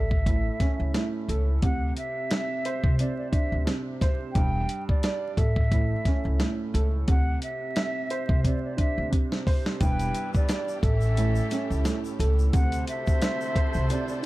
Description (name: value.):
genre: hip hop, boom-bap hip-hop.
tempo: 88 BPM.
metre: 4/4.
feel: swing 56% on 16ths.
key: unclear.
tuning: A4 = 440 Hz.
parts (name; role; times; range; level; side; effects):
hollow concert flute; melody; 0.0-14.2 s; D5 to G5; -33 LUFS; equal; high-pass filter, low-pass filter.
dark upright piano; accompaniment; 0.0-14.3 s; G2 to E5; -31 LUFS; right 3 dB; high-pass filter, low-pass filter.
upright bass; bass; 0.0-13.9 s; E1 to D2; -26 LUFS; equal; none.
dusty soul sampler-style drum kit; drums; 0.1-14.1 s; hi-hat, kick drum, snare drum; -25 LUFS; equal; none.
warm studio string section; sustained chords; 9.8-14.3 s; D3 to A4; -40 LUFS; left 2 dB; high-pass filter, low-pass filter.
warm horn section; stabs; 9.8-14.3 s; C#4 to C5; -37 LUFS; left 2 dB; high-pass filter, low-pass filter, tape echo.
egg shaker; percussion; 9.8-14.3 s; none; -49 LUFS; left 5 dB; none.
room: small room ambience.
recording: dark, warm production, vinyl crackle.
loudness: -23 LUFS.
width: side -18 dB against mid.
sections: 0.0-9.8 A section; 9.8-14.3 B section.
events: drum fill 8.4-9.8.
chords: 0.0 A; 1.6 Dsus2; 4.4 Em7; 5.4 A; 7.1 Dsus2; 9.8 Em7; 10.8 A7; 12.5 D9.